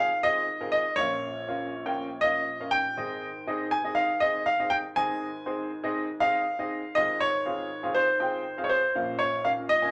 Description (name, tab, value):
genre	soul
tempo	120 BPM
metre	4/4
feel	straight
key	Ab major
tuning	A4 = 440 Hz
part	bright grand piano	melody	0.0-9.9 s	C5 to Ab5	-28 LUFS	equal	none
part	warm upright piano	accompaniment	0.0-9.9 s	Ab1 to Ab5	-35 LUFS	equal	none
room	moderate club reverb, RT60 0.7 s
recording	none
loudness	-28 LUFS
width	mono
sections	0.0-9.9 A section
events	none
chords	0.0 Fm/Ab; 1.0 Bbm; 3.0 Ab; 7.0 Fm/Ab; 8.9 Bbm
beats	0.49 | 0.99 1.49 1.98 2.48 | 2.98 3.48 3.98 4.47 | 4.97 5.47 5.97 6.47 | 6.96 7.46 7.96 8.45 | 8.95 9.45